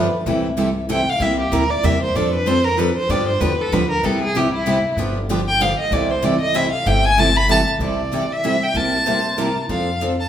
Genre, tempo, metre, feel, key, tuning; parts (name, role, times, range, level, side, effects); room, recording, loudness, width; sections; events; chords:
acoustic string swing (jazz manouche); 191 BPM; 3/4; swing 58% on 8ths; C major; A4 = 440 Hz
picked swing-style acoustic guitar; second line; 0.0-0.2, 9.1-9.6 s; Bb4 to C5; -26 LUFS; equal
picked steel-string acoustic guitar; accompaniment; 0.0-10.1 s; C3 to A4; -24 LUFS; left 3 dB
picked steel-string acoustic guitar; accompaniment; 0.0-10.1 s; C3 to A4; -22 LUFS; right 2 dB
upright bass; bass; 0.0-10.3 s; G1 to G2; -24 LUFS; equal
warm violin; melody; 0.9-10.3 s; E4 to B5; -19 LUFS; equal
wet large studio reverb, RT60 1.3 s; band playing live in one room; -16 LUFS; side -10 dB against mid
0.3-7.8 A section; 7.8-10.3 B section
violin solo 0.3-7.8
0.3 C6; 1.2 C9; 2.1 F6; 3.1 G6; 4.0 Cmaj7; 5.0 G7; 5.9 C6; 7.8 C69; 8.7 C6; 9.7 F6